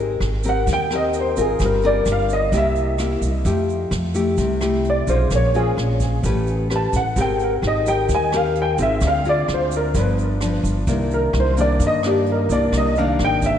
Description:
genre	bossa nova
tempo	129 BPM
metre	4/4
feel	straight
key	C minor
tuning	A4 = 440 Hz
part	nylon-string guitar	accompaniment	0.0-13.6 s	G2 to B4	-22 LUFS	left 3 dB	none
part	upright bass	bass	0.0-13.6 s	G1 to G2	-22 LUFS	equal	none
part	jazz brush drum kit	drums	0.2-13.5 s	hi-hat, kick drum, rim click	-29 LUFS	equal	none
part	egg shaker	percussion	0.4-13.6 s	none	-39 LUFS	right 15 dB	none
part	warm grand piano	melody	0.5-13.6 s	G4 to A5	-22 LUFS	right 1 dB	ensemble chorus, tape echo
room	moderate lush hall reverb, RT60 2.2 s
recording	dreamy mix soaked in reverb, nothing above 10.5 kHz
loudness	-17 LUFS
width	side -9 dB against mid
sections	0.0-13.6 A section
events	grand piano solo 0.0-13.6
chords	0.0 Abmaj9; 1.6 Gm7; 2.5 C7; 3.5 Fmaj9; 5.3 Bbm7; 6.2 A9; 7.2 Abmaj9; 9.0 Dm7b5; 9.9 G7; 10.9 Cm9

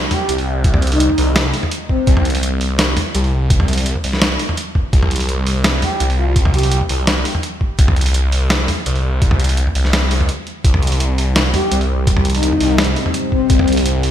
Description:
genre	half-time drum and bass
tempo	168 BPM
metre	4/4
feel	swing 53% on 16ths, half-time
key	C minor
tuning	A4 = 440 Hz
part	phased detuned saw bass	bass	0.0-14.1 s	C2 to Db2	-17 LUFS	equal	phaser, tube saturation
part	breathy flute-like synth lead	melody	0.1-2.2, 5.8-6.8, 11.5-13.7 s	C4 to G4	-20 LUFS	left 2 dB	analog chorus, ping-pong delay
part	boom bap sampler-style drum kit	drums	0.1-14.1 s	hi-hat, snare drum, toms	-18 LUFS	equal	gated reverb
part	electronic kick drum	drums	0.6-13.6 s	none	-14 LUFS	equal	none
part	deep dark ambient pad	sustained chords	11.6-14.1 s	G3 to G5	-24 LUFS	right 2 dB	chorus, built-in reverb, vintage 12-bit sampler grit, sidechain pumping
room	light reverb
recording	bright 1980s-style digital production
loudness	-13 LUFS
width	side -10 dB against mid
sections	0.0-14.1 A section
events	break 10.3-10.6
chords	0.0 C5

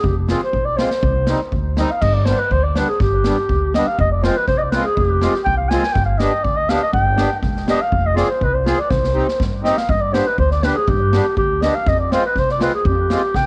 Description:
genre	klezmer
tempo	122 BPM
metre	2/4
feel	straight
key	unclear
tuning	A4 = 440 Hz
part	breathy clarinet	melody	0.0-13.5 s	G4 to Ab5	-21 LUFS	equal	cassette tape, analog delay
part	upright bass	bass	0.0-13.5 s	E1 to G2	-22 LUFS	equal	none
part	street-band drum kit	drums	0.0-13.5 s	crash cymbal, kick drum, snare drum	-25 LUFS	equal	cassette tape
part	accordion	accompaniment	0.3-13.2 s	G3 to Ab4	-26 LUFS	equal	cassette tape
room	light reverb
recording	home recording on cassette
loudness	-18 LUFS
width	mono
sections	0.0-2.0 A section; 2.0-9.9 B section; 9.9-13.5 B section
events	drum fill 8.9-9.9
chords	0.0 Fm; 1.0 Cm; 2.0 G; 4.0 Fm; 6.0 G; 7.9 Fm; 8.9 Cm; 9.9 G; 11.9 Fm

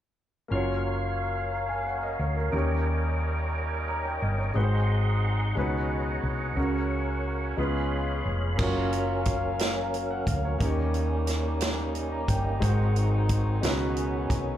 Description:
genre	slow gospel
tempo	60 BPM (dotted quarters)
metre	6/8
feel	straight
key	F# major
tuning	A4 = 439 Hz
part	clear grand piano	accompaniment	0.5-14.6 s	G#2 to A#5	-32 LUFS	left 2 dB	slapback echo
part	muted French horn section	sustained chords	0.5-14.6 s	F#3 to E#5	-36 LUFS	left 2 dB	none
part	percussive tonewheel organ	sustained chords	0.5-14.6 s	D#3 to B#5	-33 LUFS	right 4 dB	slow rotary speaker, overdrive, chorus vibrato
part	hollow-body short-scale fingered electric bass	bass	0.5-14.6 s	E#1 to D#2	-28 LUFS	equal	none
part	swinging big-band drum kit	drums	8.6-14.5 s	crash cymbal, hi-hat, kick drum, snare drum	-29 LUFS	right 1 dB	none
room	light reverb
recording	live gig heard through the venue's PA, club reverb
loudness	-25 LUFS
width	side -11 dB against mid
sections	0.5-8.6 A section; 8.6-14.6 B section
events	grand piano fill 3.5-4.6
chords	0.5 F#maj7; 2.5 D#7; 4.6 G#7; 5.6 C#9sus4; 6.6 F#/C#; 7.6 C#7; 8.6 F#maj7; 10.6 D#7; 12.6 G#7; 13.6 C#9sus4

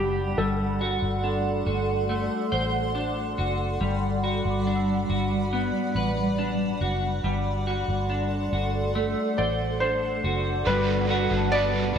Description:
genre	dream pop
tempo	70 BPM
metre	4/4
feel	straight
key	G major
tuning	A4 = 439 Hz
part	felt-muted upright piano	melody	0.0-1.2, 9.4-12.0 s	G4 to D5	-28 LUFS	equal	tape echo
part	granular cloud pad	sustained chords	0.0-12.0 s	G3 to C6	-29 LUFS	right 2 dB	built-in reverb
part	clean electric guitar	arpeggios	0.0-12.0 s	G3 to C5	-28 LUFS	left 2 dB	analog chorus, tape echo
part	vintage muted fingered electric bass	bass	0.0-12.0 s	F#1 to A1	-29 LUFS	equal	none
part	large celesta	texture	4.2-12.0 s	F#5 to E6	-39 LUFS	right 4 dB	stereo widening, tape echo
part	biting overdriven guitar	accompaniment	10.7-12.0 s	G3 to B4	-30 LUFS	right 6 dB	harmonic tremolo, analog chorus
room	moderate lush hall reverb, RT60 2.2 s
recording	none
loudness	-23 LUFS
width	side -8 dB against mid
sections	0.0-10.7 A section; 10.7-12.0 B section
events	none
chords	0.4 D7/G; 10.7 Gmaj7

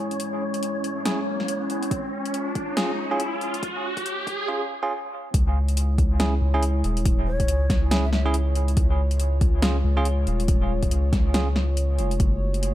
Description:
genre	deep dubstep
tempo	140 BPM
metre	4/4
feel	swing 60% on 16ths, half-time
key	unclear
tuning	A4 = 439 Hz
part	dark analog pad	sustained chords	0.0-12.7 s	G#3 to C#5	-31 LUFS	left 1 dB	chorus
part	riser	sound effects	0.6-4.5 s	none	-31 LUFS	equal	none
part	wind-like tuned noise texture	texture	0.0-4.5 s	C#4 to C#5	-32 LUFS	equal	built-in reverb
part	deep house drum kit	drums	0.1-12.7 s	hi-hat, snare drum	-28 LUFS	left 1 dB	overdrive
part	bell-like tine electric piano	stabs	1.1-11.5 s	C#4 to G#4	-30 LUFS	right 2 dB	vintage 12-bit sampler grit, low-pass filter, dub echo
part	electronic kick drum	drums	1.9-12.3 s	none	-22 LUFS	equal	overdrive
part	soft dub sub bass	bass	5.3-12.7 s	D#1 to C#2	-22 LUFS	equal	none
part	breathy hollow long shakuhachi	melody	7.3-8.2 s	C#5 to E5	-32 LUFS	left 2 dB	dub echo
room	light reverb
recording	high-pass filter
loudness	-21 LUFS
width	side -13 dB against mid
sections	0.0-5.3 A section; 5.3-12.7 B section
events	build-up 0.0-5.3; filter sweep on tine electric piano 0.0-5.3; filter sweep 0.0-5.3; riser 0.6-4.5; drop 5.3-12.7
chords	0.0 C#m; 1.9 C#; 5.3 C#m; 8.8 C#; 12.2 F#m

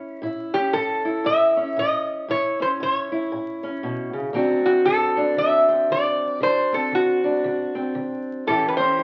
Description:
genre	acoustic country blues, solo or duo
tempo	116 BPM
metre	4/4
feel	swing 60% on 8ths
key	A mixolydian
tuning	A4 = 440 Hz
part	fingerpicked steel-string acoustic guitar	accompaniment	0.0-9.0 s	A2 to G4	-28 LUFS	equal	none
part	metal-body resonator slide guitar	melody	0.5-9.0 s	F#4 to E5	-22 LUFS	equal	none
room	moderate large studio reverb, RT60 0.9 s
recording	very old 78 rpm record, vinyl crackle, nothing above 7.7 kHz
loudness	-22 LUFS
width	mono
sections	0.0-9.0 A section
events	none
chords	0.0 A; 4.3 D7; 8.5 A7

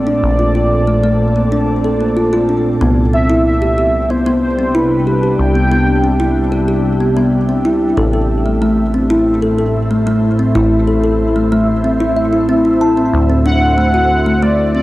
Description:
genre	IDM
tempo	93 BPM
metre	4/4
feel	straight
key	C lydian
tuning	A4 = 440 Hz
part	warm velvety synth lead	melody	0.0-6.4, 13.5-14.8 s	B4 to G5	-18 LUFS	equal	chorus, cassette tape, shimmer reverb, tape echo
part	glassy FM pad	sustained chords	0.0-14.8 s	A2 to E5	-17 LUFS	equal	ensemble chorus, built-in reverb, cassette tape, shimmer reverb
part	deep acid bass	bass	0.0-14.8 s	A1 to D2	-18 LUFS	equal	none
part	kalimba	arpeggios	0.1-14.8 s	A3 to A5	-15 LUFS	equal	cassette tape, shimmer reverb, tape echo
room	moderate spring reverb, RT60 2.0 s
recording	home recording on cassette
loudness	-11 LUFS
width	side -17 dB against mid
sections	0.0-2.8 A section; 2.8-14.8 B section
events	none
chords	0.0 Bbmaj7; 2.8 C; 8.0 Am; 13.1 D7

